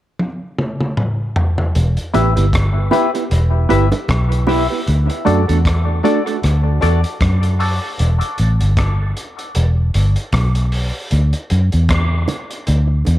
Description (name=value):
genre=dub reggae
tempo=77 BPM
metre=4/4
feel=swing 57% on 16ths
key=E minor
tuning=A4 = 440 Hz
part: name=crunchy breakbeat drum kit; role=drums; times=0.2-13.2 s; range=hi-hat, kick drum, rim click, toms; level=-22 LUFS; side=equal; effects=none
part: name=vintage muted fingered electric bass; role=bass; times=1.8-13.2 s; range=E1 to F#2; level=-14 LUFS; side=equal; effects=none
part: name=mellow electric guitar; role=accompaniment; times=2.1-7.9 s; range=A3 to B4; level=-22 LUFS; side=right 7 dB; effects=harmonic tremolo, high-pass filter, dub echo
part: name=percussive organ stab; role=stabs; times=2.1-7.8 s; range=D4 to E5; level=-21 LUFS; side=left 4 dB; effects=chorus, phaser, high-pass filter, dub echo
part: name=bongos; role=percussion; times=2.9-4.7, 12.3-13.2 s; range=none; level=-26 LUFS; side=right 4 dB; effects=dub echo
room=light reverb, small room ambience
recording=echo-heavy mix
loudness=-14 LUFS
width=side -14 dB against mid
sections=0.0-1.8 A section; 1.8-13.2 B section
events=drum fill 0.2-1.8; part muted 4.9-11.1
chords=0.0 N.C.; 1.8 Em; 4.9 D; 8.0 Em; 11.1 D